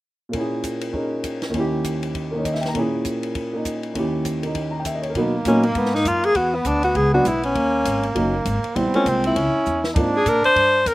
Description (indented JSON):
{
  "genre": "jazz, small-group swing and bop",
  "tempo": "200 BPM",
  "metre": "4/4",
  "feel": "swing 60% on 8ths",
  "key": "G# minor",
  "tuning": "A4 = 438 Hz",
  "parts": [
    { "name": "warm concert grand piano", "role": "accompaniment", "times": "0.3-10.1 s", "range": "D#2 to A#5", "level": "-23 LUFS", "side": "right 1 dB", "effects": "none" },
    { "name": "compact cocktail drum kit", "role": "drums", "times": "0.3-10.9 s", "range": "hi-hat, kick drum, ride cymbal, snare drum", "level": "-31 LUFS", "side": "left 1 dB", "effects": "none" },
    { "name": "upright bass", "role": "bass", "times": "5.1-10.9 s", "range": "F#1 to B2", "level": "-24 LUFS", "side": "equal", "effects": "none" },
    { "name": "breathy trumpet", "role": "second line", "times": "5.2-10.8 s", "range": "A#3 to D4", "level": "-25 LUFS", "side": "right 3 dB", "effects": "slapback echo" },
    { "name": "bright alto saxophone", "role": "melody", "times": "5.5-10.9 s", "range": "A#3 to B#4", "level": "-18 LUFS", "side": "left 1 dB", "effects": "none" }
  ],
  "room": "little or no reverb",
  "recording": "recorded outdoors, with no room sound",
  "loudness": "-18 LUFS",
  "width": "side -18 dB against mid",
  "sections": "0.3-5.2 A section; 5.2-10.9 B section",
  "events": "drum fill 9.7",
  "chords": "0.3 A#m7b5; 1.5 D#7b9; 2.8 A#m7b5; 4.0 D#7b9; 5.2 G#m9; 6.4 E7sus2; 7.6 D#m7; 8.8 A#5; 9.4 C#m; 10.0 G#69"
}